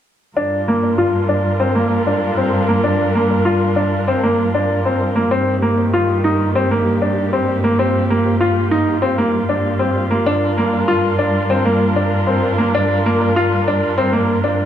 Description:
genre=piano and strings electronica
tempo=97 BPM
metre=4/4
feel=straight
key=G minor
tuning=A4 = 439 Hz
part: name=muted chamber string section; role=sustained chords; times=0.4-14.7 s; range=Eb3 to Bb4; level=-21 LUFS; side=equal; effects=none
part: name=clear upright piano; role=riff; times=0.4-14.7 s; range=Bb3 to F4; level=-16 LUFS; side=left 1 dB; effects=low-pass filter, digital delay
part: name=warm studio cello section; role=bass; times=0.4-14.7 s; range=G2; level=-21 LUFS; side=right 1 dB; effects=tube saturation
room=moderate echo chamber reverb, RT60 1.3 s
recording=none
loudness=-14 LUFS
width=side -10 dB against mid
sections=0.4-14.7 A section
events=filter sweep on upright piano 0.4-14.7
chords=0.4 Gm7; 5.3 Eb/G; 10.3 Gm7

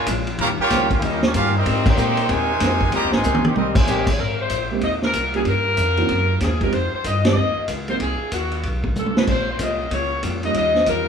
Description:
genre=jazz, big band swing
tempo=189 BPM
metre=4/4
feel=swing 63% on 8ths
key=Ab major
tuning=A4 = 441 Hz
part: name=clear trumpet section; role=melody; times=0.0-4.1 s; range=Bb3 to Bb5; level=-22 LUFS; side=right 2 dB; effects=none
part: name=muted trombone section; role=second line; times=0.0-4.1 s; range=C3 to G4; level=-26 LUFS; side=right 2 dB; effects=none
part: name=vintage hollow-body jazz guitar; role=accompaniment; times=0.1-4.1, 9.3-11.1 s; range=Bb2 to Bb4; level=-27 LUFS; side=left 4 dB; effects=none
part: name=upright bass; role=bass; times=0.1-11.1 s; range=Ab1 to Bb2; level=-25 LUFS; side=equal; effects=none
part: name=vintage drum kit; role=drums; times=0.1-11.0 s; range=crash cymbal, hi-hat, kick drum, ride cymbal, snare drum, toms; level=-23 LUFS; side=equal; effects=none
part: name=clear saxophone section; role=melody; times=3.9-11.1 s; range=Gb4 to Eb5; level=-22 LUFS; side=left 2 dB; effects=none
part: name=warm upright piano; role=accompaniment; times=4.7-10.5 s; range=Fb3 to G4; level=-25 LUFS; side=right 4 dB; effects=none
room=moderate large studio reverb, RT60 1.1 s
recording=band playing live in one room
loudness=-17 LUFS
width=side -7 dB against mid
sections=0.0-4.2 A section; 4.2-11.1 B section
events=band accent 1.8, 3.7, 7.2; drum fill 3.2-3.9, 9.0-9.3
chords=0.4 Eb9; 1.7 Abmaj9; 5.5 Gm7b5; 6.1 Gb; 6.7 F7sus2; 8.0 Cdim; 8.6 Bsus2; 9.3 Bbm7; 10.6 Eb9

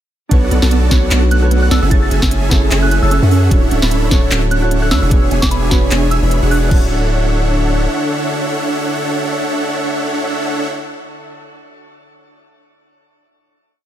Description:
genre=future bass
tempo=150 BPM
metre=4/4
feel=swing 56% on 16ths, half-time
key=D lydian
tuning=A4 = 440 Hz
part: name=glassy digital keys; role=accompaniment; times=0.3-12.4 s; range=D4 to D5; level=-24 LUFS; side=right 2 dB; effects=chorus, sidechain pumping, ping-pong delay
part: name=airy breathy pad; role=sustained chords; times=1.0-10.7 s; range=D3 to G#5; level=-27 LUFS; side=left 1 dB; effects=chorus, sidechain pumping
part: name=thumb-piano-like synth pluck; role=arpeggios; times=0.3-6.9 s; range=B3 to B4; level=-24 LUFS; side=right 6 dB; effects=chorus, sidechain pumping, ping-pong delay
part: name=supersaw chords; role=riff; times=0.3-10.7 s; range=B3 to B5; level=-19 LUFS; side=right 1 dB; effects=sidechain pumping, ping-pong delay
part: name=long sustained 808-style bass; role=bass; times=0.3-7.9 s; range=D1 to F#2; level=-14 LUFS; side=equal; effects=sidechain pumping
part: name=electronic kick drum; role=drums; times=0.3-6.8 s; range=none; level=-13 LUFS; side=equal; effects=none
part: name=trap drum kit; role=drums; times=0.3-6.8 s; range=crash cymbal, handclaps, hi-hat, snare drum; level=-20 LUFS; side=left 1 dB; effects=none
part: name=soft synth bell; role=melody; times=1.3-6.7 s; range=B5 to A6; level=-24 LUFS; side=right 1 dB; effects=chorus, sidechain pumping, ping-pong delay
room=digital ambience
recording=none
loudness=-12 LUFS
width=side -11 dB against mid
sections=0.3-6.7 drop; 6.7-9.9 final chord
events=drop 0.3-6.7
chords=0.3 Bm7; 1.9 F#m9; 3.5 Dmaj9; 5.1 E13; 6.7 Dmaj9

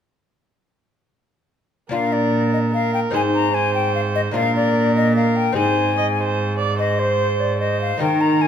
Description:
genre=classical, renaissance-style consort dance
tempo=148 BPM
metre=3/4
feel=straight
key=unclear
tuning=A4 = 437 Hz
part: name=hollow concert flute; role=melody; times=1.9-8.5 s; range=C5 to Bb5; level=-22 LUFS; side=left 6 dB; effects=none
part: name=warm viola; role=second line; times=1.9-8.5 s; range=Bb4 to Eb5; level=-23 LUFS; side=right 5 dB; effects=none
part: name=lute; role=accompaniment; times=1.9-8.5 s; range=Ab2 to Bb4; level=-24 LUFS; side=left 2 dB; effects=none
part: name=rich cello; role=bass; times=1.9-8.5 s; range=Ab2 to Eb3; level=-21 LUFS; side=right 2 dB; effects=none
room=wet recital hall reverb, RT60 1.7 s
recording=none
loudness=-17 LUFS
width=side -8 dB against mid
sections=1.9-8.5 A section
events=none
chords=1.9 Bb; 3.1 Ab; 4.3 Bb; 5.6 Ab

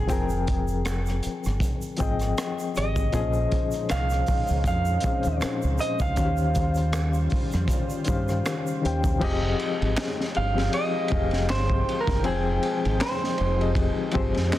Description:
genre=R&B, neo-soul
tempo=79 BPM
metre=4/4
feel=swing 54% on 16ths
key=F minor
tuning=A4 = 442 Hz
part: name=electric guitar through a small old amp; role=melody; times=0.0-13.7 s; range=Ab4 to F5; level=-30 LUFS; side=right 2 dB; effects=slapback echo
part: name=reed electric piano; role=accompaniment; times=0.0-14.6 s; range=Bb2 to G5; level=-28 LUFS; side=left 4 dB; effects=fast tremolo
part: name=deep dub fingered electric bass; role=bass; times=0.0-14.5 s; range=F1 to G2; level=-26 LUFS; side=equal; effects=none
part: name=crunchy breakbeat drum kit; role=drums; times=0.1-14.6 s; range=crash cymbal, handclaps, hi-hat, kick drum, ride cymbal, rim click, snare drum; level=-28 LUFS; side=equal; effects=none
part: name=egg shaker and finger snaps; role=percussion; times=0.1-9.2 s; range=none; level=-43 LUFS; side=right 4 dB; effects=none
part: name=lush unison pad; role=sustained chords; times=3.1-14.6 s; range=Db3 to G5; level=-36 LUFS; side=equal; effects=chorus
room=small room ambience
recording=dense, heavily limited modern master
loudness=-22 LUFS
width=side -14 dB against mid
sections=0.0-9.2 A section; 9.2-14.6 B section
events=none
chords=0.0 Fm9; 3.1 Bbm11; 6.2 Eb13; 9.2 Fm9

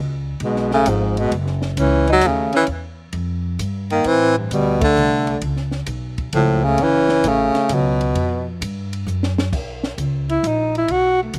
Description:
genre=jazz, small-group swing and bop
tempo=132 BPM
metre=3/4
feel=swing 68% on 8ths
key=unclear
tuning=A4 = 440 Hz
part: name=upright bass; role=bass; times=0.0-11.4 s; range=F#1 to A2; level=-25 LUFS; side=equal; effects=none
part: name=clear baritone saxophone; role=melody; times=0.4-8.5 s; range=G2 to F#3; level=-20 LUFS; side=equal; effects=slapback echo
part: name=breathy alto saxophone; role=second line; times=0.4-8.2, 10.3-11.4 s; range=E3 to F#4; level=-23 LUFS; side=equal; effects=slapback echo
part: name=compact cocktail drum kit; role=drums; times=0.4-11.4 s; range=crash cymbal, hi-hat, kick drum, ride cymbal, snare drum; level=-30 LUFS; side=equal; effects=none
room=little or no reverb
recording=recorded outdoors, with no room sound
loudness=-19 LUFS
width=mono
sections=0.0-9.5 A section; 9.5-11.4 B section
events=band accent 4.7; drum fill 9.1-9.5; alto saxophone solo 9.5-11.4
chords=0.0 C#5; 1.3 F#5; 2.7 Em; 4.1 Am; 5.4 C#aug7; 6.8 F#m7; 8.2 Fsus2; 9.1 N.C.; 9.5 Bsus2

